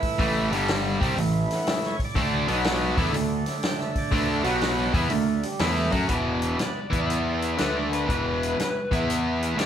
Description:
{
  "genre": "blues rock power trio and southern rock",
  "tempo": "122 BPM",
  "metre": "4/4",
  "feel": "swing 67% on 8ths",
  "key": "unclear",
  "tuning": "A4 = 437 Hz",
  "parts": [
    { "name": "overdriven tonewheel organ", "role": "sustained chords", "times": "0.0-9.7 s", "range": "D3 to G5", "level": "-30 LUFS", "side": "right 2 dB", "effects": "slow rotary speaker" },
    { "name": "vintage drum kit", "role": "drums", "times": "0.0-9.7 s", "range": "hi-hat, kick drum, snare drum", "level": "-28 LUFS", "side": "equal", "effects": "none" },
    { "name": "distorted electric guitar", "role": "riff", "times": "0.2-9.7 s", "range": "E2 to F#4", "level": "-25 LUFS", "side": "equal", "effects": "overdrive" },
    { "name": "fuzz picked electric bass", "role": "bass", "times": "0.2-9.7 s", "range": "E1 to F#2", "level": "-29 LUFS", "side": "equal", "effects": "overdrive" },
    { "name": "overdriven slide guitar", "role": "melody", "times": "6.6-9.0 s", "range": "B4 to D5", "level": "-30 LUFS", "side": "left 2 dB", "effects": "none" }
  ],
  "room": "light reverb",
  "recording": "band playing live in one room",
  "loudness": "-22 LUFS",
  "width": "side -9 dB against mid",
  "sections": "0.0-6.1 A section; 6.1-9.7 B section",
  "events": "tonewheel organ solo 0.0-6.1",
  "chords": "0.4 G5; 0.9 A5; 2.2 D5; 2.4 B5; 2.9 D5; 4.4 B5; 4.9 D5; 6.1 E; 7.6 D5; 8.1 E"
}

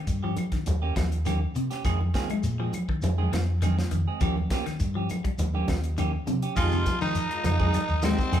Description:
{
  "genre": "afrobeat",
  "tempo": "102 BPM",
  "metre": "4/4",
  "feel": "straight",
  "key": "F minor",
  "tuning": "A4 = 439 Hz",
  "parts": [
    { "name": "semi-hollow electric guitar", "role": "arpeggios", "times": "0.0-8.2 s", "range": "C3 to Ab3", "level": "-32 LUFS", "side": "left 3 dB", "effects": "phaser" },
    { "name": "fingered electric bass", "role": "bass", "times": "0.1-8.4 s", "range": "Eb2 to F3", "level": "-27 LUFS", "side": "equal", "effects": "none" },
    { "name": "tight funk drum kit", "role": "drums", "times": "0.1-8.4 s", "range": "crash cymbal, hi-hat, kick drum, snare drum", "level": "-31 LUFS", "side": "equal", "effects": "none" },
    { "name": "shekere", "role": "percussion", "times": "0.1-8.4 s", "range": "none", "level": "-35 LUFS", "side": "left 3 dB", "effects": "none" },
    { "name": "semi-hollow electric guitar", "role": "stabs", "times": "0.2-8.4 s", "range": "Eb3 to Ab4", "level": "-35 LUFS", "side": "right 6 dB", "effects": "none" },
    { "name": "claves", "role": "percussion", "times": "0.4-8.4 s", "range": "none", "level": "-44 LUFS", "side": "left 1 dB", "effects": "none" },
    { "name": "congas", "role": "percussion", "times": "0.4-8.4 s", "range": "none", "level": "-33 LUFS", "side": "right 1 dB", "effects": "none" },
    { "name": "raspy tenor saxophone", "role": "melody", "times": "6.6-8.4 s", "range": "C4 to F4", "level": "-29 LUFS", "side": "left 1 dB", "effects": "none" },
    { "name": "breathy baritone saxophone", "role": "second line", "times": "6.6-8.4 s", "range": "C3 to F3", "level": "-38 LUFS", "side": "right 6 dB", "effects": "none" },
    { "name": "bright trumpet", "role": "second line", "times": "6.6-8.4 s", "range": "C4 to F4", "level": "-38 LUFS", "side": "right 2 dB", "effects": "none" },
    { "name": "percussive tonewheel organ", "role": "accompaniment", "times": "6.6-8.3 s", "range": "Ab3 to G4", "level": "-37 LUFS", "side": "equal", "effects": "slow rotary speaker, chorus vibrato" }
  ],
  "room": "moderate large studio reverb, RT60 1.2 s",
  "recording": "band playing live in one room",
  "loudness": "-24 LUFS",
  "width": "side -10 dB against mid",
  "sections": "0.0-6.6 A section; 6.6-8.4 B section",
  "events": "none",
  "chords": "0.0 Eb7; 1.9 Fm7; 4.2 Eb7; 6.6 Fm7"
}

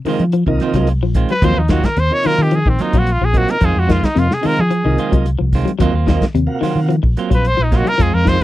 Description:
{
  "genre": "afrobeat",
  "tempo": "110 BPM",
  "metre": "4/4",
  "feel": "straight",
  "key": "Eb dorian",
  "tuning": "A4 = 441 Hz",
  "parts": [
    { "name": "fingered electric bass", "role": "bass", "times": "0.0-8.4 s", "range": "Bb1 to F3", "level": "-16 LUFS", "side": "equal", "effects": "none" },
    { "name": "tonewheel organ", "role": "accompaniment", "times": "0.1-8.4 s", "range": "C3 to Gb4", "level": "-21 LUFS", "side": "right 4 dB", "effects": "fast rotary speaker" },
    { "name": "electric guitar at the edge of break-up", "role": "arpeggios", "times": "0.1-8.4 s", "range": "C3 to Gb3", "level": "-21 LUFS", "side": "left 7 dB", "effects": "none" },
    { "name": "clean electric guitar", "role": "stabs", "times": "0.1-8.4 s", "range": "Eb3 to F4", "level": "-21 LUFS", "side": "right 7 dB", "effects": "none" },
    { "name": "warm soul drum kit", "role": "drums", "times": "0.1-8.4 s", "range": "hi-hat, kick drum, snare drum", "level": "-18 LUFS", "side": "equal", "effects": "none" },
    { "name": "clear trumpet", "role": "melody", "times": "1.3-8.4 s", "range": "C4 to Db5", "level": "-18 LUFS", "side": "equal", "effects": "none" }
  ],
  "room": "little or no reverb",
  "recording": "dry, close 1970s-style studio recording",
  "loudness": "-13 LUFS",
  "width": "side -15 dB against mid",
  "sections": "0.0-8.4 A section",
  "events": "trumpet solo 0.0-8.4",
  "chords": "0.0 Fm7; 1.4 Ebm69; 3.6 Fm7; 5.8 Ebm69"
}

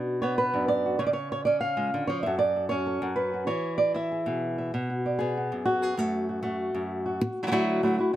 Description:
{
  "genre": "flamenco",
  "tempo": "193 BPM",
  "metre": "4/4",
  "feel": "straight",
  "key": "F# minor",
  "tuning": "A4 = 444 Hz",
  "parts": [
    { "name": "flamenco guitar", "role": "solo", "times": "0.0-8.2 s", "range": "F#2 to E#5", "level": "-25 LUFS", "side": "right 1 dB", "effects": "none" }
  ],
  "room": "light reverb",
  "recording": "close, detailed microphones",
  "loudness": "-25 LUFS",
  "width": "side -13 dB against mid",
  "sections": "0.0-7.2 A section",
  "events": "none",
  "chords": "0.0 Bm; 1.0 C#; 2.2 F#m; 3.5 E; 4.7 Bm; 6.0 F#m; 7.2 Dadd9"
}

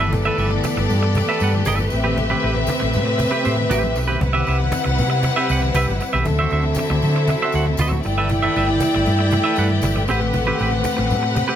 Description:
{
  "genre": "disco",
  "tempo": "117 BPM",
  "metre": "4/4",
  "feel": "straight",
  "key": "G major",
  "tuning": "A4 = 441 Hz",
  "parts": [
    { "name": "dark chamber string section", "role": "second line", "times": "0.0-11.6 s", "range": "B3 to G5", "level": "-22 LUFS", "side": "left 1 dB", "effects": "none" },
    { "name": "semi-hollow electric guitar", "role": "accompaniment", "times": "0.0-11.6 s", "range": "C4 to F#5", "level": "-23 LUFS", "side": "right 4 dB", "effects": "none" },
    { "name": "clear studio string section", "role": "sustained chords", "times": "0.0-11.6 s", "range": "C3 to B4", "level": "-26 LUFS", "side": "equal", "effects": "none" },
    { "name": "hollow-body short-scale fingered electric bass", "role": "bass", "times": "0.0-11.4 s", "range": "G1 to D3", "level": "-21 LUFS", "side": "equal", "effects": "none" },
    { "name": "cajon", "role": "drums", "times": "0.0-11.6 s", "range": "none", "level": "-26 LUFS", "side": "equal", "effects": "none" },
    { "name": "congas", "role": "percussion", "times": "0.0-11.6 s", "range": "none", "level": "-30 LUFS", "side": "left 4 dB", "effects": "none" },
    { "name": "tambourine", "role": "percussion", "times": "0.1-11.5 s", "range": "none", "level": "-39 LUFS", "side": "left 5 dB", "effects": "none" }
  ],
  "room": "light reverb",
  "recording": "none",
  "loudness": "-16 LUFS",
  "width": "side -10 dB against mid",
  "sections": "0.0-11.6 A section",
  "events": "none",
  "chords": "0.0 G69; 1.9 Am9; 4.2 Cmaj7; 6.3 D9; 8.0 G69; 10.1 Am9"
}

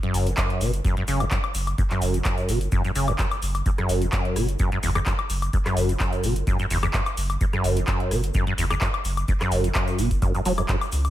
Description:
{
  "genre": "acid house",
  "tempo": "128 BPM",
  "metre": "4/4",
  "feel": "straight",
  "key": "unclear",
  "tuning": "A4 = 440 Hz",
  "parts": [
    { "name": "acid bass, saw", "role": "riff", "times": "0.0-10.8 s", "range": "E2 to F#3", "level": "-25 LUFS", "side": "equal", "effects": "overdrive, ensemble chorus, sidechain pumping, digital delay" },
    { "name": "booming analog drum machine", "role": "drums", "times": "0.0-11.1 s", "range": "handclaps, hi-hat, rim click, woodblock", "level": "-29 LUFS", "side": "left 2 dB", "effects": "none" },
    { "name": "warm sub bass", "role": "bass", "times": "0.1-11.1 s", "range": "E1 to C#2", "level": "-26 LUFS", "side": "equal", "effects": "tube saturation, sidechain pumping" },
    { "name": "egg shaker", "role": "percussion", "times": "0.1-11.1 s", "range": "none", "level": "-40 LUFS", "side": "left 3 dB", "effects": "none" },
    { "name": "electronic kick drum", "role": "drums", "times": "0.4-10.8 s", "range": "none", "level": "-25 LUFS", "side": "equal", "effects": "none" }
  ],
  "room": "light reverb, digital ambience",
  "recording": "none",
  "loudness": "-21 LUFS",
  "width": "side -13 dB against mid",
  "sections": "0.0-11.1 A section",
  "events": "none",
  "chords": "0.0 F#5"
}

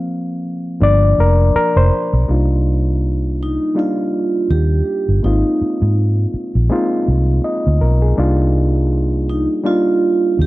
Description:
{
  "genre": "lush 1970s-style soul",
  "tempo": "82 BPM",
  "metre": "4/4",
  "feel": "swing 58% on 16ths",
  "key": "C minor",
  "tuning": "A4 = 440 Hz",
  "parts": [
    { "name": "overdriven reed electric piano", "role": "accompaniment", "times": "0.0-10.5 s", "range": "F3 to F5", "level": "-18 LUFS", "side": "left 1 dB", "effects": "none" },
    { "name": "vintage muted fingered electric bass", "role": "bass", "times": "0.8-10.5 s", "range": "F1 to Ab2", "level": "-14 LUFS", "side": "equal", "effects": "none" },
    { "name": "vibraphone with soft mallets", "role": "melody", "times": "3.4-10.5 s", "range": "Eb4 to G4", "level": "-19 LUFS", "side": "right 3 dB", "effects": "none" }
  ],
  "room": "small room ambience",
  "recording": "none",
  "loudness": "-14 LUFS",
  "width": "side -18 dB against mid",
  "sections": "0.0-2.3 A section; 2.3-10.5 B section",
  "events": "reed electric piano solo 0.0-2.3",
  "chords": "0.0 Ab69 (rootless); 0.8 Gm7; 2.3 Cm11; 5.2 Ab69; 8.2 Cm11"
}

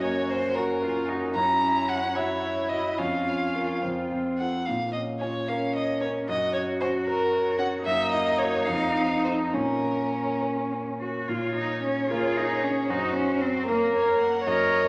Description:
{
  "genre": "quick classical-period movement for piano quartet",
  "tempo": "68-77 BPM (dotted quarters)",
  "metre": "6/8",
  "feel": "rubato",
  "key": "Bb minor",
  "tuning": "A4 = 440 Hz",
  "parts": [
    { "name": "rich violin", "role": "melody", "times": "0.0-14.9 s", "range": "Bb4 to Bb5", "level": "-31 LUFS", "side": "equal", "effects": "none" },
    { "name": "dark violin", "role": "second line", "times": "0.0-14.9 s", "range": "Bb3 to Db5", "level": "-32 LUFS", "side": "equal", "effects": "none" },
    { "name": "rich cello", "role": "second line", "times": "0.0-14.9 s", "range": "Bb3 to Bb4", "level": "-32 LUFS", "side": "equal", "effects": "none" },
    { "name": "bright concert grand piano", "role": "accompaniment", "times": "0.0-14.9 s", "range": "F2 to Db5", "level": "-33 LUFS", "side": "equal", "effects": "none" }
  ],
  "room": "wet recital hall reverb, RT60 1.5 s",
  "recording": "none",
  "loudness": "-26 LUFS",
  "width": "mono",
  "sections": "0.0-11.3 A section; 11.3-14.9 A section",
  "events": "none",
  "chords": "0.0 Gb; 1.4 Gb7; 3.0 Bbm/F; 3.8 F; 4.7 Bbm; 6.3 Gb; 7.9 Gb7; 8.7 F7; 9.5 Bbm; 12.9 Gb"
}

